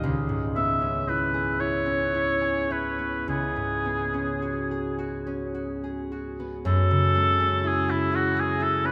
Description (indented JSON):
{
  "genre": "classical, impressionist duo for oboe and harp",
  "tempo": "34-44 BPM (dotted quarters)",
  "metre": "6/8",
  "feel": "rubato",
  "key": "F# minor",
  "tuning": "A4 = 440 Hz",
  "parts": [
    { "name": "clear oboe", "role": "melody", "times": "0.0-8.9 s", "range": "E4 to E5", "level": "-28 LUFS", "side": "equal", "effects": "none" },
    { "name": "concert harp", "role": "accompaniment", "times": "0.0-8.9 s", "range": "C#2 to G#4", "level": "-29 LUFS", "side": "equal", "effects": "none" }
  ],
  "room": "wet cathedral reverb, RT60 5.5 s",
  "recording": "in a vast, echoing space",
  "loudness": "-26 LUFS",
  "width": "mono",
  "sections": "0.0-6.7 A section; 6.7-8.9 B section",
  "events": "none",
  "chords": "0.0 C#m9; 3.3 C#7sus4; 6.7 F#m9",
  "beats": "| 0.05 1.61 | 3.28 4.99 | 6.66 8.13"
}